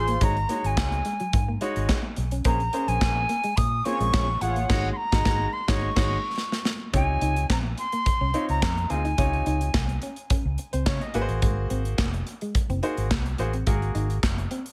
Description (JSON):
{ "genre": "early-eighties boogie funk", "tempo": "107 BPM", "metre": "4/4", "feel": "straight", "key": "Db major", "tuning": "A4 = 436 Hz", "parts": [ { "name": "silver concert flute", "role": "melody", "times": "0.0-10.0 s", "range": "Gb5 to Eb6", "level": "-31 LUFS", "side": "equal", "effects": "tape echo" }, { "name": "mellow synth brass", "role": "second line", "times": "0.0-0.2, 3.9-4.7 s", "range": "F4 to Db5", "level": "-34 LUFS", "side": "equal", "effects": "chorus" }, { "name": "vintage muted fingered electric bass", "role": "bass", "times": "0.0-14.5 s", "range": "F1 to Db3", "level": "-29 LUFS", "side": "equal", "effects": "none" }, { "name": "semi-hollow electric guitar", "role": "riff", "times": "0.1-14.6 s", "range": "Gb3 to Eb4", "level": "-36 LUFS", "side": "equal", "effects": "subtle chorus" }, { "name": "modern studio drum kit", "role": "drums", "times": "0.1-14.7 s", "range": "crash cymbal, handclaps, hi-hat, kick drum, snare drum", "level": "-29 LUFS", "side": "equal", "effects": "gated reverb" }, { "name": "clear grand piano", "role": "accompaniment", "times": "0.2-14.2 s", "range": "C3 to Eb5", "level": "-33 LUFS", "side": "equal", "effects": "none" } ], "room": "little or no reverb", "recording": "none", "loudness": "-25 LUFS", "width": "mono", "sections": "0.0-6.9 A section; 6.9-14.7 B section", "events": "band accent 4.7-6.9; drum fill 6.4-6.9", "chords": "0.2 Ab7sus4; 2.5 Bbm9; 4.7 Ab7sus4; 6.9 Dbmaj9; 11.1 Ab9", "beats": "| 0.21 0.77 1.33 1.89 | 2.46 3.02 3.58 4.14 | 4.70 5.26 5.82 6.38 | 6.94 7.50 8.06 8.62 | 9.18 9.74 10.30 10.87 | 11.43 11.99 12.55 13.11 | 13.67 14.23" }